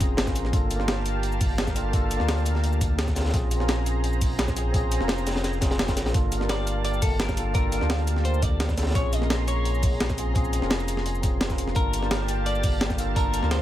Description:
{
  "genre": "liquid drum and bass",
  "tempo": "171 BPM",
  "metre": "4/4",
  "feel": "straight",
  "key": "G minor",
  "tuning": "A4 = 441 Hz",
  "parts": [
    { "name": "tine electric piano", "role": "accompaniment", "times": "0.0-13.6 s", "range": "Bb3 to Bb4", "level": "-31 LUFS", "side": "left 1 dB", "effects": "wide subtle chorus, digital delay" },
    { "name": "lush unison pad", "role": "sustained chords", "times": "0.0-13.6 s", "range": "G4 to C6", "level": "-34 LUFS", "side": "equal", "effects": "chorus, sidechain pumping" },
    { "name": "sub bass with octave", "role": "bass", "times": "0.0-13.6 s", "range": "F1 to D2", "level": "-27 LUFS", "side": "equal", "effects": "none" },
    { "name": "breakbeat sampler-style drum kit", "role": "drums", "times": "0.0-13.6 s", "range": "cabasa, hi-hat, snare drum", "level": "-29 LUFS", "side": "equal", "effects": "none" },
    { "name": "crunchy breakbeat drum kit", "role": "drums", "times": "0.0-13.6 s", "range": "hi-hat, snare drum", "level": "-34 LUFS", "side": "equal", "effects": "high-pass filter on hats, high-pass filter on snare, high-pass filter on room" },
    { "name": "electronic kick drum", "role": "drums", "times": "0.0-13.2 s", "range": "none", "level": "-26 LUFS", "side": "equal", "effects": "none" },
    { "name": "clean electric guitar", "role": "melody", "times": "6.5-13.6 s", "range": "A4 to Eb5", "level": "-32 LUFS", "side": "left 1 dB", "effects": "wide subtle chorus" }
  ],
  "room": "little or no reverb",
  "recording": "none",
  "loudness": "-22 LUFS",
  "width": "side -13 dB against mid",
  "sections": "0.0-13.6 A section",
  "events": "none",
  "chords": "0.0 Bbm9; 0.5 Gm9; 3.3 Bbm9; 6.1 Gm9; 9.0 Bbm9; 11.8 Gm9"
}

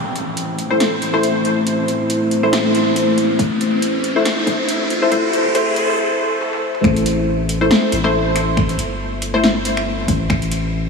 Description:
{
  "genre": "deep dubstep",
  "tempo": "139 BPM",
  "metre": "4/4",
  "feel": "swing 56% on 16ths, half-time",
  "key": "A minor",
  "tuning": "A4 = 440 Hz",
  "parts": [
    { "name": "dark analog pad", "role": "sustained chords", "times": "0.0-6.8 s", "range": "A3 to C5", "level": "-20 LUFS", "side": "left 1 dB", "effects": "chorus, vintage 12-bit sampler grit" },
    { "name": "saturated sub bass", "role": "bass", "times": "0.0-10.9 s", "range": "G1 to A1", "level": "-24 LUFS", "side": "left 1 dB", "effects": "high-pass filter" },
    { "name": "riser and swell", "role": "sound effects", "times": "0.0-6.8 s", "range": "none", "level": "-24 LUFS", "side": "equal", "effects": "none" },
    { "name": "deep house drum kit", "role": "drums", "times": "0.2-10.6 s", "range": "finger snaps, hi-hat, snare drum, toms", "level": "-22 LUFS", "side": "equal", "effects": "overdrive, high-pass filter on hats, studio reverb, high-pass filter on snare, high-pass filter on toms" },
    { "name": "filtered dub chord stab", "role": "stabs", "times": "0.7-9.5 s", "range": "A3 to C5", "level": "-19 LUFS", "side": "left 1 dB", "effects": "chorus, cassette tape, dub echo" },
    { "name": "electronic kick drum", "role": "drums", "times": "3.4-10.4 s", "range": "none", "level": "-20 LUFS", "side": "equal", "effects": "overdrive, studio reverb" }
  ],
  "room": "wet huge ambient reverb, RT60 4.7 s",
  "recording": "dreamy mix soaked in reverb, high-pass filter",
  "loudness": "-15 LUFS",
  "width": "side -4 dB against mid",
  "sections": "0.0-6.8 A section; 6.8-10.9 B section",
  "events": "build-up 0.0-6.8; riser 0.0-6.0; break 6.0-6.8; swell 6.0-6.8; drum fill 6.4-6.8; drop 6.8-10.9",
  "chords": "0.0 Am"
}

